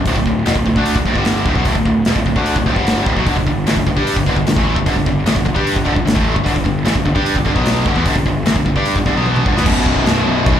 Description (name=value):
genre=heavy metal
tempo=150 BPM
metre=4/4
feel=straight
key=unclear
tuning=A4 = 439 Hz
part: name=tight distorted guitar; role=riff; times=0.0-10.6 s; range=B1 to G4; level=-17 LUFS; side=equal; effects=distortion, slapback echo
part: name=fuzz picked electric bass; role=bass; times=0.0-10.6 s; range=B0 to G2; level=-18 LUFS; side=equal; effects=overdrive
part: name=big rock drum kit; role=drums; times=0.1-10.6 s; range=crash cymbal, hi-hat, kick drum, snare drum, toms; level=-19 LUFS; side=equal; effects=none
part: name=fuzz guitar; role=riff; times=9.6-10.6 s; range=B1 to B2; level=-18 LUFS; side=equal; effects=distortion
room=light reverb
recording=live gig heard through the venue's PA, club reverb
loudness=-13 LUFS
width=side -10 dB against mid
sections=0.0-9.7 A section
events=drum fill 9.3-9.7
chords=0.1 D5; 3.3 G5; 9.7 B5